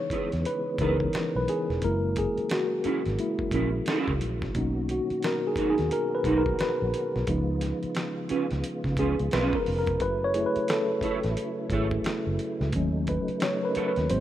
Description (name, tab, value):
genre	R&B, neo-soul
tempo	88 BPM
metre	4/4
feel	swing 61% on 16ths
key	unclear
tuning	A4 = 441 Hz
part	mellow tine electric piano	accompaniment	0.0-14.2 s	E3 to C#5	-28 LUFS	left 1 dB	medium stereo tremolo
part	tonewheel organ	sustained chords	0.0-14.2 s	B2 to F#4	-36 LUFS	right 1 dB	slow rotary speaker, chorus vibrato
part	electric guitar at the edge of break-up	second line	0.1-13.9 s	C#4 to C#5	-30 LUFS	right 4 dB	ensemble chorus
part	vintage muted fingered electric bass	bass	0.1-14.2 s	E1 to C#3	-29 LUFS	equal	none
part	dusty soul sampler-style drum kit	drums	0.1-14.2 s	hi-hat, kick drum, snare drum	-34 LUFS	equal	none
room	light reverb, digital ambience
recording	rough home demo mix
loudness	-25 LUFS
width	side -12 dB against mid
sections	0.0-14.2 A section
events	tine electric piano solo 0.0-14.2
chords	0.0 C#m7; 1.8 F#7; 4.5 Bmaj7; 7.3 C#7; 10.0 F#m7; 12.7 D#m7b5